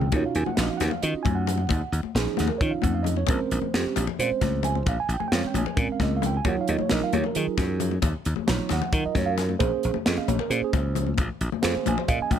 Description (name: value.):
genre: electric jazz fusion.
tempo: 266 BPM (eighths).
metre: 7/8.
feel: straight.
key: Eb minor.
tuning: A4 = 440 Hz.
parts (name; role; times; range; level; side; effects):
mellow tine electric piano; accompaniment; 0.0-12.4 s; F3 to Ab5; -27 LUFS; right 8 dB; phaser.
slap bass; bass; 0.0-12.4 s; Bb1 to Eb3; -26 LUFS; left 1 dB; none.
congas; percussion; 0.0-12.4 s; none; -31 LUFS; left 13 dB; none.
crisp fusion drum kit; drums; 0.1-12.4 s; hi-hat, kick drum, snare drum; -28 LUFS; left 1 dB; none.
room: light reverb, small room ambience.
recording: none.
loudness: -22 LUFS.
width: side -9 dB against mid.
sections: 0.0-12.4 A section.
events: none.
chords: 0.1 Ebm9; 3.3 Bbm9; 6.4 Ebm9; 9.6 Bbm9.